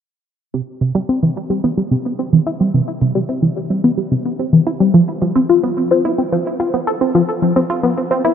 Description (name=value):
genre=ambient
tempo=109 BPM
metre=4/4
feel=straight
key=C major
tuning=A4 = 440 Hz
part: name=tight sequenced synth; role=riff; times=0.5-8.3 s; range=C3 to A4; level=-14 LUFS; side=equal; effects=chorus, phaser, tape echo
room=wet huge ambient reverb, RT60 7.9 s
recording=none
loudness=-14 LUFS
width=side -8 dB against mid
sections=0.5-8.3 A section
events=filter sweep on synth arpeggio sound 0.5-8.3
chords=none